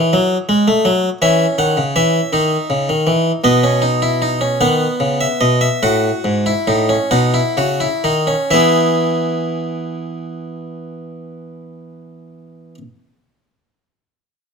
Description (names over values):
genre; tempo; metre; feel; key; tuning
classical, baroque-style 3-part fugue for harpsichord; 42-56 BPM (dotted quarters); 12/8; straight; E major; A4 = 440 Hz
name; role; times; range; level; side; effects
harpsichord; solo; 0.0-12.8 s; G#2 to F#5; -14 LUFS; equal; none
room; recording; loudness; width
moderate large studio reverb, RT60 1.1 s; none; -13 LUFS; side -5 dB against mid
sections
0.0-8.5 A section; 8.5-14.2 B section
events
slowing down 0.5-8.5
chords
0.0 C#5; 1.2 C#madd9; 3.4 B; 8.5 E